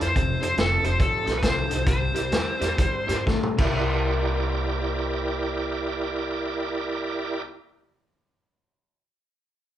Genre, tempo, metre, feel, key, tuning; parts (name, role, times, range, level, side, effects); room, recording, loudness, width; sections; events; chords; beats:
electric blues shuffle; 115-145 BPM; 4/4; swing 63% on 8ths; C mixolydian; A4 = 441 Hz
smooth overdriven lead guitar; melody; 0.0-3.2 s; A4 to C5; -26 LUFS; equal; slapback echo
bright tonewheel organ; accompaniment; 0.0-7.4 s; Eb4 to D5; -29 LUFS; right 3 dB; slow rotary speaker, chorus vibrato
electric guitar through a small old amp; riff; 0.0-7.5 s; F2 to G4; -32 LUFS; left 2 dB
upright bass; bass; 0.0-7.4 s; F1 to G2; -29 LUFS; equal
vintage drum kit; drums; 0.0-3.7 s; crash cymbal, hi-hat, kick drum, snare drum, toms; -25 LUFS; equal
moderate large studio reverb, RT60 0.9 s; band playing live in one room; -22 LUFS; side -11 dB against mid
0.0-3.8 A section; 3.8-7.9 B section
slowing down 0.2-3.8; drum fill 3.3-3.8
0.2 F7; 1.9 C7
| 0.16 0.57 1.00 1.42 | 1.86 2.31 2.78 3.27 | 3.77 4.29 4.81 5.33 | 5.85 6.37 6.89 7.41